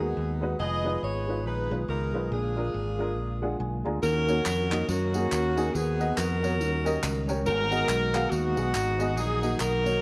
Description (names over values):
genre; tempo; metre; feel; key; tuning
uptempo gospel; 140 BPM; 4/4; swing 59% on 8ths; Eb minor; A4 = 440 Hz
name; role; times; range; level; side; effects
warm saxophone section; melody; 0.0-10.0 s; Bb3 to Eb5; -31 LUFS; equal; none
dark upright piano; accompaniment; 0.0-10.0 s; Ab2 to Bb5; -35 LUFS; equal; none
percussive tonewheel organ; sustained chords; 0.0-10.0 s; D3 to Bb4; -38 LUFS; equal; none
fingered electric bass; bass; 0.0-10.0 s; F1 to Gb2; -32 LUFS; equal; none
tambourine and handclaps; percussion; 4.0-9.9 s; none; -40 LUFS; equal; none
room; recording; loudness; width
moderate echo chamber reverb, RT60 2.2 s; none; -27 LUFS; mono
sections
0.0-4.0 A section; 4.0-10.0 B section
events
upright piano fill 3.2-4.0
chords
0.0 Abm7; 0.6 Fm7b5; 2.3 Bb7; 4.0 Ebm7; 5.7 Bmaj7/D#; 6.6 Eb7; 7.5 Abm7; 9.2 Ebm/Bb